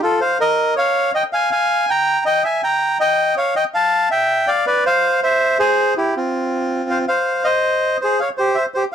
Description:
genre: tango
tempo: 162 BPM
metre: 3/4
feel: rubato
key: unclear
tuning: A4 = 440 Hz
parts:
  - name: bandoneon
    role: solo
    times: 0.0-8.9 s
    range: C4 to Bb5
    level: -15 LUFS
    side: equal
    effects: none
room: small room reverb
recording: dry, close 1970s-style studio recording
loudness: -15 LUFS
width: side -8 dB against mid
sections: 0.0-7.3 A section; 7.3-8.9 B section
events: none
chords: 0.0 F; 0.6 Bbm; 1.7 Ebadd9; 2.4 Edim; 2.8 Eb; 3.9 G7; 5.0 N.C.; 5.4 C; 6.2 N.C.; 7.3 Ab6; 8.4 C

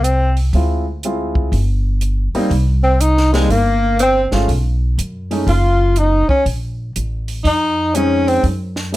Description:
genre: jazz, small-group swing and bop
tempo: 122 BPM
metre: 4/4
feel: swing 66% on 8ths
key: unclear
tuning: A4 = 439 Hz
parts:
  - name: warm tenor saxophone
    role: melody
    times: 0.0-8.4 s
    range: Ab3 to F4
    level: -17 LUFS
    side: left 2 dB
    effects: none
  - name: clear alto saxophone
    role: second line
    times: 0.0-8.4 s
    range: Ab3 to F4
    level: -20 LUFS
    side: right 2 dB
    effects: none
  - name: upright bass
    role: bass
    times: 0.0-9.0 s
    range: F#1 to F#2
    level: -17 LUFS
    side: equal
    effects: none
  - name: compact cocktail drum kit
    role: drums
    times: 0.0-9.0 s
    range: hi-hat, kick drum, snare drum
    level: -23 LUFS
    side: equal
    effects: none
  - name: warm grand piano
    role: accompaniment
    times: 0.5-9.0 s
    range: G3 to F4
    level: -20 LUFS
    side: right 1 dB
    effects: none
room: light reverb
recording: none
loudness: -14 LUFS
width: side -16 dB against mid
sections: 0.0-9.0 A section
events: none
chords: 0.0 N.C.; 0.5 Dm7b5; 1.5 Gmadd11; 2.5 Cm7; 4.5 B; 6.5 Bbm11; 8.4 N.C.

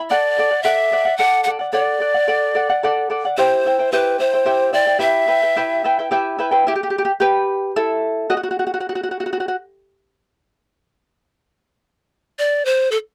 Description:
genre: andean folk, Andean ensemble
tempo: 73 BPM (dotted quarters)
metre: 6/8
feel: straight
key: E minor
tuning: A4 = 440 Hz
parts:
  - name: charango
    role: accompaniment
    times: 0.0-9.6 s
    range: E4 to B5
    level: -21 LUFS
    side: equal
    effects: none
  - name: breathy pan flute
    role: melody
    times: 0.1-6.1, 12.4-13.0 s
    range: A4 to F#5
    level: -19 LUFS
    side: equal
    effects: none
room: little or no reverb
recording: dry, gritty hardware recording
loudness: -18 LUFS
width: mono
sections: 0.0-6.6 A section; 6.6-13.1 B section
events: charango solo 6.6-13.1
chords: 0.1 D; 3.4 C; 5.0 Em; 8.3 N.C.

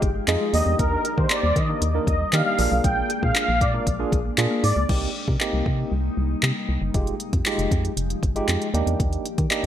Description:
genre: dance-pop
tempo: 117 BPM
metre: 4/4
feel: straight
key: C minor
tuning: A4 = 440 Hz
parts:
  - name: tine electric piano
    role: accompaniment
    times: 0.0-9.7 s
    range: Ab3 to Bb4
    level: -27 LUFS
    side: right 2 dB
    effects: medium stereo tremolo, sidechain pumping
  - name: glassy FM pad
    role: sustained chords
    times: 0.0-9.7 s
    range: C3 to D5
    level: -32 LUFS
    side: left 3 dB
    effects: ensemble chorus, built-in reverb, sidechain pumping
  - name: thumb-piano-like synth pluck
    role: arpeggios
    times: 0.0-4.9 s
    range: Eb3 to Ab4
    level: -34 LUFS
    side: left 4 dB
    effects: chorus, sidechain pumping, digital delay
  - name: organ-like FM bass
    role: bass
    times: 0.0-9.7 s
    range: F1 to Eb3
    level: -24 LUFS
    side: equal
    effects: sidechain pumping
  - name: smooth R&B drum kit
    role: drums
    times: 0.0-9.7 s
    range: crash cymbal, handclaps, hi-hat, kick drum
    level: -24 LUFS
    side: equal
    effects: gated reverb
  - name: filtered supersaw swell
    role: melody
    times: 0.5-4.7 s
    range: Bb4 to G5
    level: -25 LUFS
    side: equal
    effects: sidechain pumping
room: light reverb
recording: bright 1980s-style digital production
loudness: -20 LUFS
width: side -10 dB against mid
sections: 0.0-4.9 A section; 4.9-9.7 B section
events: none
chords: 0.0 Fm9; 0.5 Ebmaj7; 2.6 Bb7; 4.9 Cm7; 6.9 Fm9; 8.7 Ebmaj7

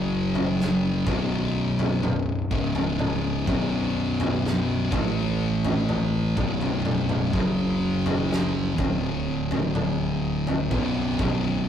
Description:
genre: stoner and doom metal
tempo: 62 BPM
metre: 4/4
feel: straight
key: B minor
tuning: A4 = 442 Hz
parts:
  - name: thick fuzz guitar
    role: riff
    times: 0.0-11.7 s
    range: B1 to A3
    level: -27 LUFS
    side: left 6 dB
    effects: distortion
  - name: thick fuzz guitar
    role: riff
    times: 0.0-11.7 s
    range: B1 to A3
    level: -27 LUFS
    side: right 4 dB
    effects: distortion
  - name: growling fingered electric bass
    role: bass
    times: 0.0-11.7 s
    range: B0 to A1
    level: -34 LUFS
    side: right 1 dB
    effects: overdrive
  - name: big rock drum kit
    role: drums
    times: 0.3-11.4 s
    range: kick drum, snare drum, toms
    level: -28 LUFS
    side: equal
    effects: none
room: moderate studio reverb, RT60 0.5 s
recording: rough rehearsal-room recording, warm saturation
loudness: -22 LUFS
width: side -9 dB against mid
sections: 0.0-11.7 A section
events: none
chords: 0.0 F#5; 1.1 B5; 2.5 C#5; 3.5 B5; 4.9 A5; 6.4 B5; 7.3 F#5; 8.8 D5; 10.7 B5

